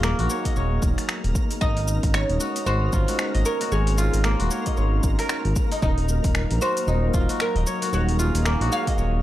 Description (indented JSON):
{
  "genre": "organic downtempo",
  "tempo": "114 BPM",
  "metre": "4/4",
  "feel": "swing 59% on 16ths",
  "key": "Eb dorian",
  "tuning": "A4 = 440 Hz",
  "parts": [
    { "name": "oud", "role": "melody", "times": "0.0-9.2 s", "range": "Eb4 to F5", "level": "-29 LUFS", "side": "right 1 dB", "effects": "tape echo" },
    { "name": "warm analog pad", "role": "sustained chords", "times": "0.0-9.2 s", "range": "Gb3 to C6", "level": "-32 LUFS", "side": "equal", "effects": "chorus, vintage 12-bit sampler grit, sidechain pumping" },
    { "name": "kora", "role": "arpeggios", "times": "0.0-9.2 s", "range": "Bb3 to Eb5", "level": "-29 LUFS", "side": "left 2 dB", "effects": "tape echo" },
    { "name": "smooth gliding synth bass", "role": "bass", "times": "0.0-9.2 s", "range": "Eb1 to Bb1", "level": "-22 LUFS", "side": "equal", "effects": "sidechain pumping" },
    { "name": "afro-pop drum kit", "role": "drums", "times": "0.0-9.1 s", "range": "finger snaps, hi-hat, shaker", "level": "-30 LUFS", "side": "equal", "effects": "studio reverb" },
    { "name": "twinkling granular texture", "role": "texture", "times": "0.0-9.2 s", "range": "Bb3 to Bb4", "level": "-36 LUFS", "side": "left 1 dB", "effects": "built-in reverb" },
    { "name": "electronic kick drum", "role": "drums", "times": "0.5-9.0 s", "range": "none", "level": "-24 LUFS", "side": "equal", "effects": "overdrive, studio reverb" }
  ],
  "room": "digital ambience",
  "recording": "dry, gritty hardware recording",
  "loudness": "-20 LUFS",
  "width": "side -14 dB against mid",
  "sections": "0.0-9.2 A section",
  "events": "none",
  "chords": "0.0 Ebm; 1.6 Absus4; 5.8 Ebm"
}